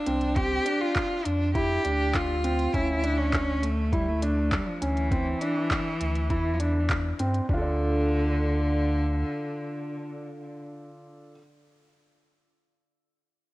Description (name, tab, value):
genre	piano and strings electronica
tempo	101 BPM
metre	4/4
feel	straight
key	D minor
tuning	A4 = 439 Hz
part	rich cello	melody	0.0-10.6 s	D3 to G4	-29 LUFS	equal	cassette tape
part	felt-muted upright piano	riff	0.1-11.4 s	C4 to D5	-30 LUFS	equal	cassette tape
part	warm sub bass	bass	0.1-9.2 s	C2 to G2	-28 LUFS	equal	sidechain pumping
part	minimal click drum kit	drums	0.1-7.5 s	handclaps, hi-hat	-33 LUFS	equal	none
part	electronic kick drum	drums	0.4-7.6 s	none	-30 LUFS	equal	none
room	moderate lush hall reverb, RT60 2.5 s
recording	home recording on cassette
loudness	-24 LUFS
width	side -18 dB against mid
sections	0.0-7.5 A section; 7.5-9.9 B section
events	drop 0.0-7.5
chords	0.0 Dm7; 2.7 Dmaj7(no3); 5.1 C/D; 7.5 Dm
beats	| 0.36 0.96 1.55 2.15 | 2.74 3.33 3.93 4.52 | 5.12 5.71 6.30 6.90 | 7.49 8.09 8.68 9.27